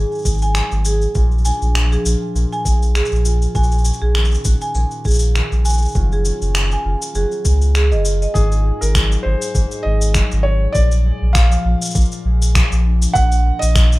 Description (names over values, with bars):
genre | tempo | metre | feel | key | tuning
folktronica | 100 BPM | 4/4 | swing 56% on 16ths | Ab mixolydian | A4 = 440 Hz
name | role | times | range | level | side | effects
concert harp | arpeggios | 0.0-14.0 s | Ab2 to Ab4 | -27 LUFS | left 3 dB | tape echo
warm sub bass | bass | 0.0-14.0 s | Gb1 to Db2 | -15 LUFS | equal | none
electronic shaker and finger snaps | drums | 0.1-14.0 s | none | -23 LUFS | left 1 dB | none
electronic kick drum | drums | 0.3-13.9 s | none | -18 LUFS | equal | none
marimba with hard mallets | second line | 0.4-8.3 s | Ab4 to Ab5 | -24 LUFS | right 2 dB | tape echo
felt-muted upright piano | melody | 8.3-14.0 s | Ab4 to Gb5 | -22 LUFS | right 1 dB | tape echo
room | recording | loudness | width
small room ambience | rough home demo mix | -14 LUFS | side -19 dB against mid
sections
0.0-8.4 A section; 8.4-14.0 B section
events
none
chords
0.0 Ab7; 1.2 Bb7; 3.6 Ebm7/Bb; 6.0 Gbmaj7; 8.4 Ab7; 10.8 Bb7; 13.2 Ebm/Bb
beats
0.55 | 1.15 1.75 2.35 2.95 | 3.55 4.15 4.75 5.35 | 5.95 6.55 7.15 7.75 | 8.35 8.95 9.55 10.15 | 10.75 11.35 11.95 12.55 | 13.15 13.75